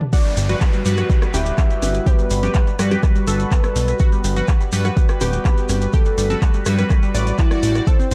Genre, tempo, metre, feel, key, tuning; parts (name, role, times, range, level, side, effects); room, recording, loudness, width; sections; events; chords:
progressive house; 124 BPM; 4/4; straight; G major; A4 = 440 Hz
tight sequenced synth; arpeggios; 0.0-8.1 s; G3 to D5; -30 LUFS; equal; chorus, sidechain pumping, digital delay
house drum kit; drums; 0.0-8.1 s; crash cymbal, handclaps, hi-hat, rim click, toms; -32 LUFS; equal
soft octave-layered synth lead; melody; 0.1-8.1 s; E4 to E5; -28 LUFS; equal; chorus, phaser, digital delay
electronic kick drum; drums; 0.1-8.0 s; -19 LUFS; equal
shekere; percussion; 0.1-8.1 s; -36 LUFS; equal
downlifter; sound effects; 0.1-4.0 s; -36 LUFS; equal
fat analog bass; bass; 0.4-8.1 s; D1 to G2; -22 LUFS; equal; sidechain pumping
chorused polysynth; stabs; 0.5-7.9 s; G3 to D5; -28 LUFS; equal; phaser, cassette tape, sidechain pumping, digital delay
electronic congas and rim click; percussion; 0.5-7.6 s; -30 LUFS; equal; sidechain pumping on perc, sidechain pumping on snare
little or no reverb; -18 LUFS; mono
0.1-8.1 A section
drop 0.1-8.1
0.1 Gmaj7